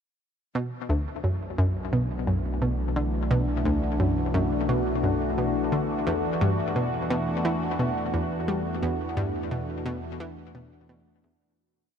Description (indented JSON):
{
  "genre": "ambient, sequencer-driven space music",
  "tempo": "87 BPM",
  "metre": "4/4",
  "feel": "straight",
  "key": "B minor",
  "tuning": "A4 = 441 Hz",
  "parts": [
    { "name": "phased analog pad", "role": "sustained chords", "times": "0.5-11.6 s", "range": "E3 to F#4", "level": "-28 LUFS", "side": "equal", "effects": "phaser, chorus, shimmer reverb" },
    { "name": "analog pluck", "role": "riff", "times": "0.6-11.4 s", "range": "D2 to G3", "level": "-27 LUFS", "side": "equal", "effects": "chorus, ping-pong delay, shimmer reverb" },
    { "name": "analog drone", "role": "bass", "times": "1.5-11.6 s", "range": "B1 to E2", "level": "-33 LUFS", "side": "equal", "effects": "chorus" }
  ],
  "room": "moderate huge ambient reverb, RT60 7.7 s",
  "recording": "none",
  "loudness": "-24 LUFS",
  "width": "side -8 dB against mid",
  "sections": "0.6-11.6 A section",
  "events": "fade-in on analog synth pad 0.6-11.6; fade-out 7.9-11.6",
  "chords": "0.6 Bm7; 6.1 E7(no3)"
}